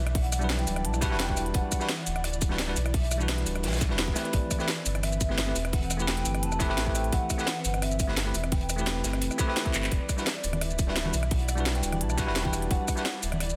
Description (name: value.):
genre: liquid drum and bass.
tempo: 172 BPM.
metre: 4/4.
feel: straight.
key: E minor.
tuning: A4 = 439 Hz.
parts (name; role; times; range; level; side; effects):
hollow clarinet-like synth lead; melody; 0.0-13.6 s; D5 to A5; -39 LUFS; equal; ensemble chorus, digital delay.
glassy FM pad; sustained chords; 0.0-13.6 s; E3 to D5; -41 LUFS; equal; ensemble chorus, built-in reverb, sidechain pumping.
sub bass with octave; bass; 0.0-13.6 s; D1 to B1; -33 LUFS; equal; none.
crunchy breakbeat drum kit; drums; 0.1-13.5 s; hi-hat, snare drum; -41 LUFS; equal; none.
drum and bass drum kit; drums; 0.1-13.6 s; handclaps, hi-hat, rim click, shaker, snare drum; -34 LUFS; equal; studio reverb.
electronic kick drum; drums; 0.1-13.0 s; none; -31 LUFS; equal; studio reverb.
bell-like tine electric piano; accompaniment; 0.4-13.1 s; F#3 to B4; -36 LUFS; equal; digital delay.
swell; sound effects; 9.4-9.9 s; none; -49 LUFS; equal; none.
congas; percussion; 10.5-13.4 s; none; -39 LUFS; equal; none.
room: light reverb.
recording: dense, heavily limited modern master.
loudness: -28 LUFS.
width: mono.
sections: 0.0-13.6 A section.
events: drum fill 9.7.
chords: 0.0 Em9; 4.2 Am9; 9.9 Em9.